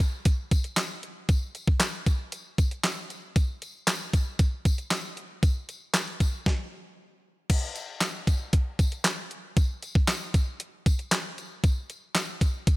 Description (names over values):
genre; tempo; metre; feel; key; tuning
pop; 116 BPM; 4/4; straight; none; none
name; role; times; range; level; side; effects
crisp 8-bit digital drum machine; drums; 0.0-12.8 s; crash cymbal, handclaps, hi-hat, kick drum, snare drum; -24 LUFS; equal; overdrive
tambourine; percussion; 0.0-12.8 s; none; -41 LUFS; left 3 dB; none
room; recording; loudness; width
digital ambience; none; -25 LUFS; side -21 dB against mid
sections
0.0-7.5 A section; 7.5-12.8 A section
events
stop 6.5-7.5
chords
none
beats
0.26 0.78 | 1.29 1.81 2.33 2.84 | 3.36 3.88 4.39 4.91 | 5.43 5.95 6.46 6.98 | 7.50 8.02 8.53 9.05 | 9.57 10.09 10.60 11.12 | 11.64 12.15 12.67